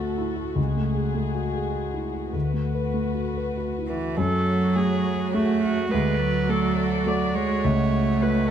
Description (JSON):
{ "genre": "neoclassical piano and strings", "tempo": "97-105 BPM", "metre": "3/4", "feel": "rubato", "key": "F# minor", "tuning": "A4 = 437 Hz", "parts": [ { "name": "dark concert grand piano", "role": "accompaniment", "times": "0.0-8.5 s", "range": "C#2 to B4", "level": "-25 LUFS", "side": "left 2 dB", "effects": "none" }, { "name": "warm chamber string section", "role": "sustained chords", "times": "0.0-8.5 s", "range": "A3 to D5", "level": "-33 LUFS", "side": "left 2 dB", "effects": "none" }, { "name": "warm cello", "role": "second line", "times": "3.9-8.5 s", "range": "E3 to A3", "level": "-24 LUFS", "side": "right 4 dB", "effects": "none" }, { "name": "rich viola", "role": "accompaniment", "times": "4.2-8.5 s", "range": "F#4 to D5", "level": "-28 LUFS", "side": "right 2 dB", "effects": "none" } ], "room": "light reverb", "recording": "dark, warm production", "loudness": "-22 LUFS", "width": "side -9 dB against mid", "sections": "0.0-4.2 A section; 4.2-8.5 B section", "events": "none", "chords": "0.0 D; 0.6 F#madd9/C#; 2.3 Bm7/D; 4.2 F#madd9; 5.9 D; 7.6 F#m/C#", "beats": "0.00 | 0.57 1.15 1.74 | 2.34 2.96 3.57 | 4.18 4.76 5.34 | 5.92 6.50 7.07 | 7.65 8.22" }